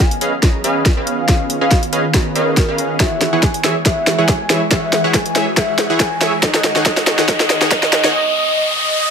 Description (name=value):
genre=future bass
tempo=140 BPM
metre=4/4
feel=swing 54% on 16ths, half-time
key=unclear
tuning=A4 = 440 Hz
part: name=warm velvety synth lead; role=melody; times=0.0-9.1 s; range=A#4 to G#5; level=-21 LUFS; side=equal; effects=chorus, sidechain pumping, tape echo
part: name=ethereal airy pad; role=sustained chords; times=0.0-8.1 s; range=D#3 to C#5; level=-26 LUFS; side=right 1 dB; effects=ensemble chorus, built-in reverb, sidechain pumping
part: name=supersaw stab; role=riff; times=0.0-8.1 s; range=D#3 to A#5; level=-19 LUFS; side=right 1 dB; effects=sidechain pumping, low-pass filter
part: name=electronic kick drum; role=drums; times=0.0-7.8 s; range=none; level=-16 LUFS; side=equal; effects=overdrive
part: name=trap drum kit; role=drums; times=0.0-8.1 s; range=hi-hat, snare drum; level=-16 LUFS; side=equal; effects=overdrive
part: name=riser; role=sound effects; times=5.3-9.1 s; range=none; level=-21 LUFS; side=left 1 dB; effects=none
room=moderate digital room reverb, RT60 1.1 s, digital ambience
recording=high-pass filter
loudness=-13 LUFS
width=side -6 dB against mid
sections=0.0-9.1 A section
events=build-up 0.0-9.1; drum fill 0.0-8.1; filter sweep on supersaw synth 0.0-9.1; filter sweep 0.0-9.1; riser 5.3-9.1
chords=0.0 C#9; 3.0 E69; 6.4 Bmaj9